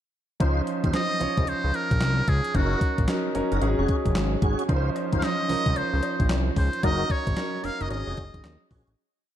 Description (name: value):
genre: R&B, new jack swing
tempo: 112 BPM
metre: 4/4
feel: swing 63% on 16ths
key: Db major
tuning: A4 = 440 Hz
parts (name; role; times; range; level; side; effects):
- clear concert grand piano; accompaniment; 0.4-9.0 s; F3 to Db5; -29 LUFS; right 1 dB; none
- tonewheel organ; stabs; 0.4-8.9 s; Db4 to C5; -33 LUFS; left 1 dB; chorus vibrato, slow rotary speaker, ping-pong delay
- fat analog bass; bass; 0.4-9.0 s; F1 to Eb2; -26 LUFS; equal; none
- clean 12-bit digital drum machine; drums; 0.4-9.0 s; handclaps, hi-hat, kick drum, snare drum; -27 LUFS; equal; none
- trumpet with metal mute; melody; 1.0-8.7 s; Gb4 to F5; -29 LUFS; right 1 dB; none
- cowbell; percussion; 4.7-8.6 s; none; -41 LUFS; left 8 dB; none
room: light reverb, small room ambience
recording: dark, warm production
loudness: -22 LUFS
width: side -11 dB against mid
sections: 0.4-9.0 verse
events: fade-out 6.8-9.0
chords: 0.4 Dbmaj9; 2.5 Gb6; 3.6 Ab7sus4; 4.7 Dbmaj9; 6.8 Gb6; 7.9 Ab7sus4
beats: | 0.41 0.94 1.48 2.01 | 2.55 3.08 3.62 4.16 | 4.69 5.23 5.76 6.30 | 6.83 7.37 7.91 8.44